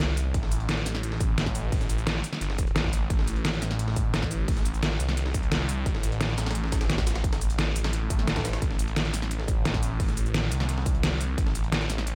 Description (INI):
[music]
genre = dark technical drum and bass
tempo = 174 BPM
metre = 4/4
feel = straight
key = A minor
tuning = A4 = 439 Hz
[part]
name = phased detuned saw bass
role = bass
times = 0.0-12.2 s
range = G1 to C2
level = -30 LUFS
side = equal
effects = phaser, tube saturation, sidechain pumping
[part]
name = breakbeat sampler-style drum kit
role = drums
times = 0.0-12.2 s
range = hi-hat, snare drum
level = -41 LUFS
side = equal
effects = high-pass filter on hats, small room reverb, high-pass filter on snare
[part]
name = dubstep drum kit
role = drums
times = 0.0-12.1 s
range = cabasa, hi-hat, snare drum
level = -33 LUFS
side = equal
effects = small room reverb
[part]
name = electronic kick drum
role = drums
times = 0.3-11.4 s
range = none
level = -30 LUFS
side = equal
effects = small room reverb
[part]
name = swell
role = sound effects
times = 8.0-8.6 s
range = none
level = -47 LUFS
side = equal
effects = none
[sound]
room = light reverb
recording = none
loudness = -27 LUFS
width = mono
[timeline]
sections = 0.0-12.2 A section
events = swell 8.0-8.6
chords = none